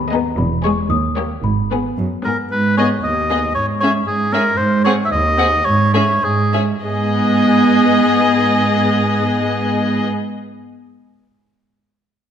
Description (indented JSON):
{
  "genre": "cinematic, playful, whimsical film cue",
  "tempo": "97-117 BPM",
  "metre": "2/4",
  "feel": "straight",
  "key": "G# minor",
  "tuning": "A4 = 440 Hz",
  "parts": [
    { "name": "worn celesta", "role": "melody", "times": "0.0-2.2 s", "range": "A#5 to D#6", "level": "-24 LUFS", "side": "left 8 dB", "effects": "none" },
    { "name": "muted chamber cello section", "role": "bass", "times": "0.0-10.0 s", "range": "D#2 to G#2", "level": "-19 LUFS", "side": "right 3 dB", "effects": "none" },
    { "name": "muted chamber violin section", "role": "melody", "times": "0.1-10.0 s", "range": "B4 to F#5", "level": "-24 LUFS", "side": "left 4 dB", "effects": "none" },
    { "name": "muted chamber violin section", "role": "second line", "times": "0.1-10.0 s", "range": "G4 to G#4", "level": "-25 LUFS", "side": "left 6 dB", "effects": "none" },
    { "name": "muted studio viola section", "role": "accompaniment", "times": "0.1-10.0 s", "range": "G#3 to C#4", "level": "-20 LUFS", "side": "equal", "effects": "none" },
    { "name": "muted studio double bass section", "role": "bass", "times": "0.4-1.9 s", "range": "E1 to D#2", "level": "-22 LUFS", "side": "right 3 dB", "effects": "none" },
    { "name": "warm oboe", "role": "second line", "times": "2.2-10.1 s", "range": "G#4 to E5", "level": "-18 LUFS", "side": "equal", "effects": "none" }
  ],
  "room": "wet scoring stage reverb, RT60 1.6 s",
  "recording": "none",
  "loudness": "-14 LUFS",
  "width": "side -8 dB against mid",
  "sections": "0.0-2.5 A section; 2.5-6.8 B section; 6.8-9.3 C section",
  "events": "slowing down 4.1-6.8",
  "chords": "0.4 C#m/E; 0.9 D#7; 1.4 G#m; 3.6 C#5/G#; 4.6 G#; 5.7 C#5/G#; 6.8 G#m"
}